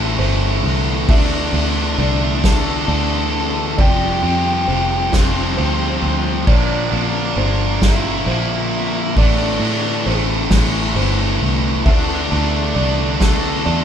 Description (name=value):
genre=post-rock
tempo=45 BPM (dotted quarters)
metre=6/8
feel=straight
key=D minor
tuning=A4 = 440 Hz
part: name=felt-muted upright piano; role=arpeggios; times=0.0-13.8 s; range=C5 to E5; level=-30 LUFS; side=right 2 dB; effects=none
part: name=distorted electric guitar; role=riff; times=0.0-13.8 s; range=A2 to F4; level=-24 LUFS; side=left 6 dB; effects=distortion
part: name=distorted electric guitar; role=riff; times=0.0-13.8 s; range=F2 to D4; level=-22 LUFS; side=right 9 dB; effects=overdrive
part: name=fingered electric bass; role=bass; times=0.0-13.8 s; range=F1 to A2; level=-21 LUFS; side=equal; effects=none
part: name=soft-mallet drum kit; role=drums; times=0.2-13.8 s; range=crash cymbal, kick drum, ride cymbal, snare drum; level=-19 LUFS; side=equal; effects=none
part: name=octave-fuzz lead guitar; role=melody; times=1.1-13.8 s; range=C4 to A4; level=-24 LUFS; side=left 1 dB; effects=distortion
room=light reverb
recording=band playing live in one room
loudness=-15 LUFS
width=side -8 dB against mid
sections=0.0-13.8 A section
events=none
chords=0.0 Asus4; 1.1 Dsus2; 3.8 Fsus2; 6.5 Bbadd9; 9.2 Asus4; 11.9 Dsus2